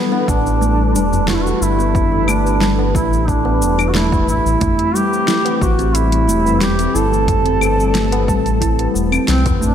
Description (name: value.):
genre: organic downtempo.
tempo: 90 BPM.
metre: 4/4.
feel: straight.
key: A minor.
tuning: A4 = 440 Hz.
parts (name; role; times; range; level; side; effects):
warm duduk; melody; 0.0-9.7 s; B3 to A4; -19 LUFS; right 1 dB; digital delay, slapback echo.
warm analog pad; sustained chords; 0.0-9.7 s; G3 to B4; -23 LUFS; left 2 dB; chorus, sidechain pumping.
kalimba; arpeggios; 0.1-9.7 s; E3 to E4; -21 LUFS; right 1 dB; digital delay, slapback echo.
tabla; percussion; 0.1-9.6 s; none; -26 LUFS; left 3 dB; none.
round analog bass; bass; 0.3-9.7 s; E1 to C2; -18 LUFS; equal; sidechain pumping.
deep house drum kit; drums; 0.3-9.7 s; cabasa, claves, hi-hat, snare drum; -23 LUFS; left 2 dB; overdrive.
electronic kick drum; drums; 0.3-9.6 s; none; -21 LUFS; equal; overdrive.
room: moderate concert hall reverb, RT60 1.9 s, small room reverb.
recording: big arena sound.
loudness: -13 LUFS.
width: side -9 dB against mid.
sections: 0.0-9.7 A section.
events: none.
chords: 0.0 G; 4.6 Am7.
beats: 0.61 1.28 | 1.95 2.61 3.28 3.95 | 4.61 5.28 5.95 6.61 | 7.28 7.95 8.61 9.28.